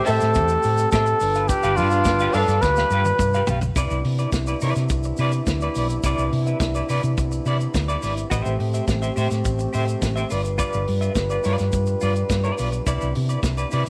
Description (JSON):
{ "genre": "disco", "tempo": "106 BPM", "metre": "4/4", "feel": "straight", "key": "C major", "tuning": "A4 = 436 Hz", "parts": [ { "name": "warm flugelhorn", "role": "melody", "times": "0.0-3.5 s", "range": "F4 to B4", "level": "-22 LUFS", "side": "equal", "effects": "none" }, { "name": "semi-hollow electric guitar", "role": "accompaniment", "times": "0.0-13.9 s", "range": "E4 to F5", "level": "-31 LUFS", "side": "equal", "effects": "tremolo" }, { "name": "warm French horn section", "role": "sustained chords", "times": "0.0-13.9 s", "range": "C3 to B4", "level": "-31 LUFS", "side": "equal", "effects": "none" }, { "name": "mellow horn section", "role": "stabs", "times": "0.0-3.4 s", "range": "A3 to D5", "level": "-32 LUFS", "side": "equal", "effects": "none" }, { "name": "dark studio violin section", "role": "second line", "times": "0.1-2.6 s", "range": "C4 to F5", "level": "-30 LUFS", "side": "equal", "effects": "none" }, { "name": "hollow-body short-scale fingered electric bass", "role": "bass", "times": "0.1-13.8 s", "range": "G1 to C3", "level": "-26 LUFS", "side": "equal", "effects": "none" }, { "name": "warm soul drum kit", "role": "drums", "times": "0.1-13.9 s", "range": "hi-hat, kick drum, snare drum, toms", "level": "-30 LUFS", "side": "equal", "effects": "none" }, { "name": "tube shaker", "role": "percussion", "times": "0.1-13.9 s", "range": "none", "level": "-42 LUFS", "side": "equal", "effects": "none" } ], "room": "light reverb, small room reverb", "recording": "none", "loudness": "-22 LUFS", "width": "mono", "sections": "0.0-3.8 A section; 3.8-13.9 B section", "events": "drum fill 2.6-3.8", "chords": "0.0 Am7; 1.2 G7; 3.8 Cmaj9; 8.3 Am7; 10.3 G7; 12.9 Cmaj9" }